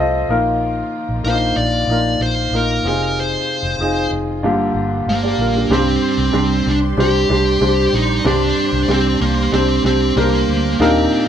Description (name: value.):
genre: pop.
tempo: 94 BPM.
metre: 4/4.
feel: straight.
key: C minor.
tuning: A4 = 439 Hz.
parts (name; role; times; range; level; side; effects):
clear concert grand piano; accompaniment; 0.0-11.3 s; G2 to F5; -17 LUFS; equal; none.
warm studio string section; sustained chords; 0.0-11.3 s; C3 to C6; -29 LUFS; left 2 dB; none.
vintage muted fingered electric bass; bass; 0.0-11.1 s; F1 to Eb2; -21 LUFS; equal; none.
dark smooth lead guitar; melody; 1.2-11.3 s; Bb3 to D5; -19 LUFS; right 2 dB; overdrive.
room: wet studio ambience, RT60 0.5 s.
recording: band playing live in one room.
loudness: -14 LUFS.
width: side -9 dB against mid.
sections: 0.0-5.7 A section; 5.7-11.3 B section.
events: none.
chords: 0.3 Bbsus4; 2.8 Fm7; 4.4 Gm7; 5.7 Csus2.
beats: | 0.62 1.25 1.89 2.53 | 3.17 3.81 4.44 5.08 | 5.72 6.35 6.99 7.62 | 8.26 8.90 9.53 10.17 | 10.80.